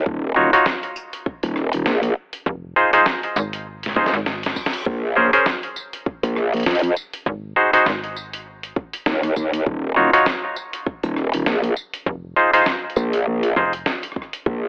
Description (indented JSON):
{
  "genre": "glitch hop",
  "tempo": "100 BPM",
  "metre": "4/4",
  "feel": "swing 57% on 16ths",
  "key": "unclear",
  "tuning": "A4 = 440 Hz",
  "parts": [
    { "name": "growl bass", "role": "bass", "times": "0.0-14.7 s", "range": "Eb1 to F2", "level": "-19 LUFS", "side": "equal", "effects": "chorus, tube saturation" },
    { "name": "electronic kick drum", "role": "drums", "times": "0.1-14.6 s", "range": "none", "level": "-24 LUFS", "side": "equal", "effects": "none" },
    { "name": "bright clav", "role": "stabs", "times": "0.4-13.7 s", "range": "Db4 to Db5", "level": "-17 LUFS", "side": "equal", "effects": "sidechain pumping, tape echo" },
    { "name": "boom bap sampler-style drum kit", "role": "drums", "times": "0.5-14.4 s", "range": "hi-hat, rim click, snare drum, tambourine", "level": "-24 LUFS", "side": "equal", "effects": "none" },
    { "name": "slap-like FM bass", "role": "bass", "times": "2.5-13.8 s", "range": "F1 to Ab1", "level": "-26 LUFS", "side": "equal", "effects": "none" },
    { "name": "reverse cymbal", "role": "sound effects", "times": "4.2-4.9 s", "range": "none", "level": "-35 LUFS", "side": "left 1 dB", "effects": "none" }
  ],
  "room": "light reverb, digital ambience",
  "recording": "telephone sound",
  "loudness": "-17 LUFS",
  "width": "side -29 dB against mid",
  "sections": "0.0-14.7 A section",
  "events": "drum fill 3.7-4.9; reverse cymbal 4.2-4.9",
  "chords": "0.1 N.C.; 2.5 Fm7; 4.9 N.C.; 7.3 Ab5; 9.7 N.C.; 12.1 Fm7"
}